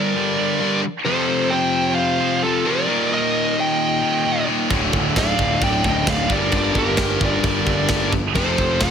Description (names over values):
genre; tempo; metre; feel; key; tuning
heavy metal; 132 BPM; 4/4; straight; unclear; A4 = 440 Hz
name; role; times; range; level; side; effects
high-gain lead guitar; melody; 0.0-8.9 s; A4 to G5; -23 LUFS; equal; distortion, tape echo
high-gain lead guitar; second line; 0.0-8.9 s; F4 to Eb5; -27 LUFS; right 4 dB; distortion
high-gain distorted guitar; riff; 0.0-8.9 s; D2 to G3; -23 LUFS; left 12 dB; distortion
scooped high-gain guitar; riff; 0.0-8.9 s; D2 to G3; -24 LUFS; right 12 dB; distortion
tight distorted guitar; riff; 4.7-8.9 s; D2 to G3; -27 LUFS; equal; distortion
fuzz picked electric bass; bass; 4.7-8.9 s; D1 to G1; -24 LUFS; equal; overdrive
tight metal drum kit; drums; 4.7-8.9 s; crash cymbal, kick drum, snare drum; -22 LUFS; equal; none
room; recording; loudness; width
small room ambience; none; -17 LUFS; side -7 dB against mid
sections
0.0-8.9 A section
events
none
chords
0.0 Gm; 1.1 F; 2.9 Eb; 4.7 Dm; 6.3 Gm; 8.4 F